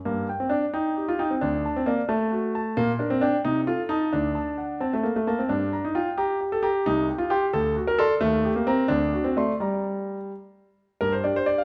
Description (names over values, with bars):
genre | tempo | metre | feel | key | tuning
classical-period piano sonatina | 88 BPM (dotted quarters) | 6/8 | rubato | G minor | A4 = 440 Hz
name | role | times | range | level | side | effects
clear concert grand piano | solo | 0.1-11.6 s | C2 to C6 | -25 LUFS | equal | none
room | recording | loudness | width
moderate recital hall reverb, RT60 1.4 s | nothing above 10.4 kHz | -25 LUFS | mono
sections
0.1-11.0 A section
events
none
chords
0.1 G5; 1.4 D; 2.8 Gm/Bb; 3.4 Adim/C; 4.1 D; 5.5 Gm; 6.9 Cm; 7.5 D7; 8.2 Eb; 8.9 D7; 9.6 Gm; 11.0 G5